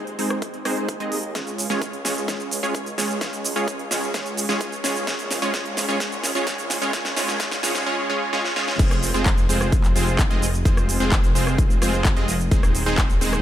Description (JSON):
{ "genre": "EDM, festival progressive house", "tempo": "129 BPM", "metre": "4/4", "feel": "straight", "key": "F minor", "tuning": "A4 = 440 Hz", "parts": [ { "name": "supersaw stab", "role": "riff", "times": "0.0-13.4 s", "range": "Ab3 to Eb5", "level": "-24 LUFS", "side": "right 1 dB", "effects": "sidechain pumping, low-pass filter, digital delay" }, { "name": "wide detuned saw bass", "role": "bass", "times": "0.0-13.4 s", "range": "Eb1 to Eb2", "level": "-28 LUFS", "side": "equal", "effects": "chorus, sidechain pumping, high-pass filter" }, { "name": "big-room dance drum kit", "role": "drums", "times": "0.1-13.4 s", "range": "crash cymbal, handclaps, hi-hat, rim click, shaker, snare drum", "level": "-26 LUFS", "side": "right 1 dB", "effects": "high-pass filter on hats, high-pass filter on snare, high-pass filter on perc, high-pass filter on cymbals" }, { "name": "electronic kick drum", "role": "drums", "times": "0.4-13.1 s", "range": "none", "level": "-20 LUFS", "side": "equal", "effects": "high-pass filter on kick, high-pass filter on room" } ], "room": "light reverb", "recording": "high-pass filter", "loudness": "-20 LUFS", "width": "side -12 dB against mid", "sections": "0.0-8.8 A section; 8.8-13.4 B section", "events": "build-up 0.0-8.8; filter sweep on supersaw synth 0.0-8.8; drum fill 1.4-7.9, 8.3-8.8; drop 8.8-13.4", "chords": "0.0 Ab/Eb; 1.4 Db; 5.1 Bbm; 8.8 Fm; 12.5 Ab/Eb" }